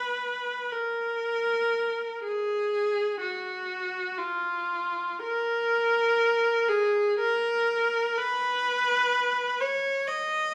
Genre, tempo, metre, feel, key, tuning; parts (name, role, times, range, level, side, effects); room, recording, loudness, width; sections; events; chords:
classical, free, expressive piece for unaccompanied viola; 54-64 BPM; 3/4; rubato; A4 = 438 Hz
clear viola; solo; 0.0-10.5 s; E#4 to D#5; -27 LUFS; equal
moderate recital hall reverb, RT60 1.4 s; -27 LUFS; mono
0.0-10.5 A section